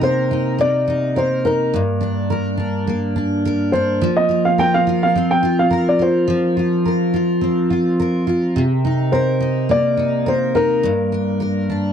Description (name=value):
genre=pop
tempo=105 BPM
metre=4/4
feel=swing 55% on 16ths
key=unclear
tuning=A4 = 440 Hz
part: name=dark upright piano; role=melody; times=0.0-11.4 s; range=Bb4 to G5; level=-18 LUFS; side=left 1 dB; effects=none
part: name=picked steel-string acoustic guitar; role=accompaniment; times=0.0-11.9 s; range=G2 to Bb4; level=-17 LUFS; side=equal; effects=double-tracked left and right
room=moderate booth ambience, RT60 0.2 s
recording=dry, close 1970s-style studio recording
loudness=-15 LUFS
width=side -8 dB against mid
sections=0.0-11.9 A section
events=none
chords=0.0 Cm7; 1.7 Gm; 4.0 Fsus4; 8.6 Cm7; 10.8 Gm